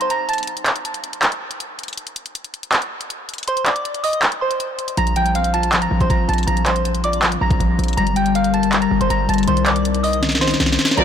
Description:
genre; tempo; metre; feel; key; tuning
hip hop, trap; 160 BPM; 4/4; half-time; unclear; A4 = 440 Hz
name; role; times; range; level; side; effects
soft synth bell; melody; 0.0-0.5, 3.5-11.0 s; C5 to Bb6; -21 LUFS; right 2 dB; chorus, low-pass filter, tape echo
trap drum kit; drums; 0.0-11.0 s; handclaps, hi-hat, kick drum, snare drum; -20 LUFS; equal; overdrive
concert harp; accompaniment; 5.0-11.0 s; Eb3 to Eb5; -21 LUFS; left 8 dB; low-pass filter
hard-hitting 808-style bass; bass; 5.0-11.0 s; G1 to C2; -22 LUFS; right 1 dB; none
rich studio violin section; second line; 11.0 s; D5; -16 LUFS; left 1 dB; none
warm brass ensemble; stabs; 11.0 s; D2 to F3; -19 LUFS; right 8 dB; none
room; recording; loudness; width
light reverb, small room ambience; blown-out, overdriven recording, overdrive; -16 LUFS; side -8 dB against mid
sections
0.0-11.0 A section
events
break 0.0-5.0; drum fill 10.2-11.0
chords
0.0 N.C.; 3.5 Cm; 5.0 Bbsus2; 8.0 Gmadd9; 9.5 Cm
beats
0.10 | 0.47 0.85 1.23 1.60 | 1.98 2.35 2.73 3.10 | 3.48 3.85 4.22 4.60 | 4.97 5.35 5.72 6.10 | 6.47 6.85 7.22 7.60 | 7.97 8.35 8.72 9.10 | 9.47 9.85 10.22 10.60 | 10.97

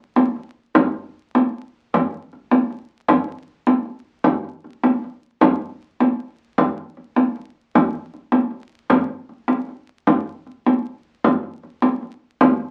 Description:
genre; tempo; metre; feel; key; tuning
medieval; 103 BPM (dotted quarters); 6/8; straight; none; none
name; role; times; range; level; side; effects
frame drum; percussion; 0.2-12.7 s; none; -18 LUFS; equal; none
room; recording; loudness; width
wet small room reverb, RT60 0.5 s; very old 78 rpm record, vinyl crackle; -21 LUFS; mono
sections
0.0-1.9 A section; 1.9-11.2 B section; 11.2-12.7 B section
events
none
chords
none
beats
0.17 | 0.76 1.34 | 1.92 2.50 | 3.08 3.67 | 4.25 4.83 | 5.42 6.00 | 6.58 7.16 | 7.75 8.33 | 8.91 9.49 | 10.07 10.66 | 11.24 11.82 | 12.40

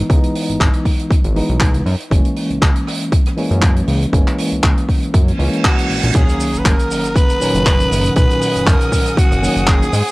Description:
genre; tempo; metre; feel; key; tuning
nu-disco, nu disco; 119 BPM; 4/4; swing 55% on 16ths; B major; A4 = 440 Hz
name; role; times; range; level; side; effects
tine electric piano; accompaniment; 0.0-9.9 s; A#2 to D#4; -20 LUFS; equal; medium tremolo, sidechain pumping
fat analog bass; bass; 0.0-10.0 s; F#1 to G#2; -18 LUFS; equal; none
electronic kick drum; drums; 0.1-9.8 s; none; -14 LUFS; equal; none
open jazz drum kit; drums; 0.1-10.1 s; crash cymbal, handclaps, hi-hat, rim click, shaker; -22 LUFS; right 1 dB; none
reverse cymbal and sub drop; sound effects; 5.3-8.2 s; none; -25 LUFS; right 2 dB; none
growling tenor saxophone; melody; 5.6-10.1 s; F#4 to B4; -20 LUFS; equal; tape echo
warm symphonic violin section; sustained chords; 6.1-10.1 s; B#4 to D#6; -28 LUFS; equal; sidechain pumping
room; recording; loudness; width
studio ambience; dry, gritty hardware recording, cassette tape; -13 LUFS; side -22 dB against mid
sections
0.0-6.1 A section; 6.1-10.1 B section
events
reverse cymbal 5.3-6.1; drop 6.1-10.1; impact 6.1-8.2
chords
0.0 C#m7; 1.9 F#7; 6.1 Bmaj7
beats
| 0.10 0.60 1.11 1.61 | 2.11 2.62 3.12 3.63 | 4.13 4.63 5.14 5.64 | 6.15 6.65 7.16 7.66 | 8.16 8.67 9.17 9.68

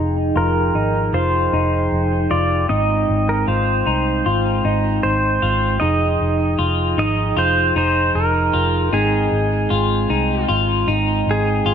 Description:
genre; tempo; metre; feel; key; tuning
dream pop; 77 BPM; 4/4; straight; F minor; A4 = 440 Hz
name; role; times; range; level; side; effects
mellow tonewheel organ; sustained chords; 0.0-11.7 s; F3 to G5; -24 LUFS; right 4 dB; slow rotary speaker, low-pass filter
clean electric guitar; arpeggios; 0.0-11.7 s; Eb4 to F4; -21 LUFS; left 3 dB; analog chorus, low-pass filter, tape echo
vintage muted picked electric bass; bass; 0.0-11.7 s; F1 to C2; -21 LUFS; equal; none
pedal steel guitar; melody; 0.4-11.7 s; Ab4 to Eb5; -21 LUFS; right 1 dB; low-pass filter, tape echo
room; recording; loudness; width
moderate scoring stage reverb, RT60 1.6 s, digital ambience; none; -16 LUFS; side -8 dB against mid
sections
0.0-11.7 A section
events
filter sweep 0.0-11.7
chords
0.0 Fm9; 2.7 Abmaj7; 5.8 Fm9; 8.9 Abmaj7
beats
0.36 1.14 1.91 | 2.69 3.47 4.25 5.03 | 5.81 6.59 7.37 8.15 | 8.93 9.71 10.49 11.27

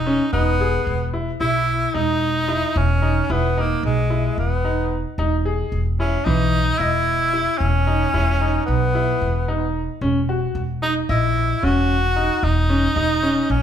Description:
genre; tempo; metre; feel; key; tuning
progressive instrumental, band music in an uneven meter; 223 BPM (eighths); 9/8; straight; E lydian; A4 = 440 Hz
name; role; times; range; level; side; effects
breathy tenor saxophone; melody; 0.0-13.6 s; G#3 to F#4; -22 LUFS; equal; none
upright bass; bass; 0.0-13.6 s; E1 to B1; -21 LUFS; equal; none
clear grand piano; arpeggios; 0.1-13.5 s; E3 to D#5; -24 LUFS; left 1 dB; none
room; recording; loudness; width
moderate large studio reverb, RT60 1.1 s; band playing live in one room; -18 LUFS; side -9 dB against mid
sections
0.3-13.6 A section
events
none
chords
0.3 Emaj7(no3); 10.0 D#m7/E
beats
0.06 | 0.33 0.60 0.87 1.14 1.41 1.68 1.95 2.22 2.49 | 2.76 3.03 3.30 3.57 3.84 4.11 4.38 4.65 4.92 | 5.18 5.45 5.72 5.99 6.26 6.53 6.80 7.07 7.34 | 7.60 7.87 8.14 8.41 8.68 8.95 9.21 9.48 9.75 | 10.02 10.29 10.55 10.82 11.09 11.36 11.62 11.89 12.16 | 12.43 12.70 12.96 13.23 13.50

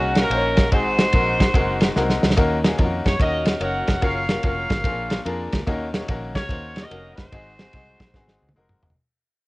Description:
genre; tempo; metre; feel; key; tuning
uptempo gospel; 146 BPM; 4/4; swing 65% on 8ths; unclear; A4 = 440 Hz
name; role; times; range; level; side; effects
clear horn section; melody; 0.0-8.5 s; Bb3 to Gb5; -24 LUFS; equal; cassette tape
bright grand piano; accompaniment; 0.0-8.9 s; Ab2 to Db5; -26 LUFS; left 2 dB; cassette tape
fingered electric bass; bass; 0.0-9.0 s; F1 to Gb2; -28 LUFS; equal; none
warm soul drum kit; drums; 0.2-9.0 s; kick drum, ride cymbal, snare drum, toms; -21 LUFS; equal; cassette tape
room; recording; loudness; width
little or no reverb; home recording on cassette; -18 LUFS; side -22 dB against mid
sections
0.0-2.4 A section; 2.4-9.0 B section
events
drum fill 2.0-2.4, 8.1-9.0; fade-out 2.4-9.0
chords
0.0 Ebm7; 0.7 Ab7; 2.4 Ebm7; 4.0 Gbmaj7; 4.8 Bb7; 5.7 Ebm7; 7.3 Ab7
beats
0.31 | 0.72 1.14 1.55 1.96 | 2.37 2.78 3.19 3.61 | 4.02 4.43 4.84 5.26 | 5.67 6.08 6.49 6.91 | 7.32 7.73 8.14 8.56

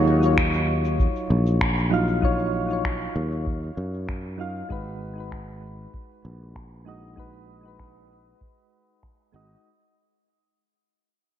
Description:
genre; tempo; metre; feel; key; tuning
sunset chillout; 97 BPM; 4/4; straight; unclear; A4 = 443 Hz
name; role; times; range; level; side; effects
soft electric-piano-like synth keys; accompaniment; 0.0-9.7 s; Gb3 to F5; -27 LUFS; equal; chorus, auto-pan, low-pass filter, ping-pong delay
sustaining fretless electric bass; bass; 0.0-9.5 s; Ab1 to Gb2; -25 LUFS; equal; none
electronic cabasa and finger snaps; drums; 0.2-9.6 s; none; -29 LUFS; equal; low-pass filter on perc, low-pass filter on snare, gated reverb
electronic kick drum; drums; 0.4-9.2 s; none; -27 LUFS; equal; none
room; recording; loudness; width
moderate lush hall reverb, RT60 2.3 s; bright 1980s-style digital production; -22 LUFS; side -10 dB against mid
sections
0.0-9.6 A section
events
fade-out 0.0-9.6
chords
0.0 Ebm9; 4.7 Abm7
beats
0.37 0.99 1.61 | 2.23 2.85 3.46 4.08 | 4.70 5.32 5.94 6.56 | 7.17 7.79 8.41 9.03

